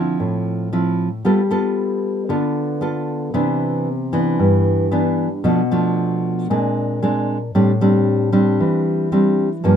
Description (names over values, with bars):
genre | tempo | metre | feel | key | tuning
bossa nova | 114 BPM | 4/4 | straight | unclear | A4 = 441 Hz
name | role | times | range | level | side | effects
nylon-string guitar | solo | 0.0-9.8 s | G2 to A4 | -16 LUFS | equal | none
room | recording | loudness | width
moderate small room reverb, RT60 0.5 s | close, detailed microphones | -16 LUFS | side -8 dB against mid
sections
0.0-9.8 A section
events
none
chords
0.0 Dm9; 1.2 G9; 3.3 Cmaj9; 5.5 Bm7b5; 6.5 Bb9; 7.6 Am7